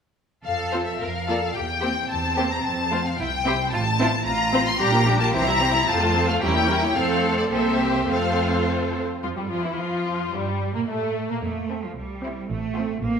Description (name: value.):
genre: quick classical-period movement for string orchestra.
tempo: 110 BPM.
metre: 2/4.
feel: rubato.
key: F major.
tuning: A4 = 440 Hz.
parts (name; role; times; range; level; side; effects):
rich studio violin section; melody; 0.4-13.0 s; G3 to C6; -25 LUFS; left 4 dB; none.
rich studio cello section; bass; 0.4-13.2 s; E3 to Bb4; -29 LUFS; right 3 dB; none.
rich studio double bass section; bass; 0.4-13.2 s; A1 to Bb2; -28 LUFS; right 3 dB; none.
rich studio violin section; second line; 0.7-13.0 s; G3 to E5; -28 LUFS; left 3 dB; none.
rich studio viola section; accompaniment; 0.7-13.0 s; E3 to F4; -27 LUFS; right 1 dB; none.
room: wet scoring stage reverb, RT60 1.9 s.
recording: minimal, uncompressed stereo recording.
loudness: -20 LUFS.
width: side -6 dB against mid.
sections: 0.4-9.2 A section; 9.2-13.2 A section.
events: none.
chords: 0.4 F; 1.0 Bb5/F; 1.6 C7/E; 2.6 F; 3.2 C; 3.7 F/A; 4.8 Gm7/Bb; 5.3 C; 5.9 F; 6.4 Edim7; 7.0 F; 7.5 C7; 8.1 F; 9.2 Fsus2; 9.8 N.C.; 10.3 Gmadd9; 11.4 F; 12.0 C; 12.5 F/A.